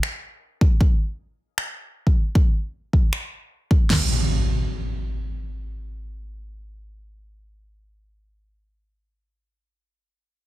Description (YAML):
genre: future bass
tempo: 155 BPM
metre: 4/4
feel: half-time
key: none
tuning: none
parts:
  - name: electronic finger snaps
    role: drums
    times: 0.0-3.2 s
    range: none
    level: -28 LUFS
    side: equal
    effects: soft clipping on snare, small room ambience
  - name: pop drum kit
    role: drums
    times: 0.6-4.0 s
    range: crash cymbal, kick drum, snare drum, toms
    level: -18 LUFS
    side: equal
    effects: small room ambience
  - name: impact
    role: sound effects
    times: 3.9-8.5 s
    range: none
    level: -26 LUFS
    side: equal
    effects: none
room: little or no reverb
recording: dense, heavily limited modern master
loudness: -20 LUFS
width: side -16 dB against mid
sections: 0.0-3.9 A section; 3.9-7.0 B section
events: none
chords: none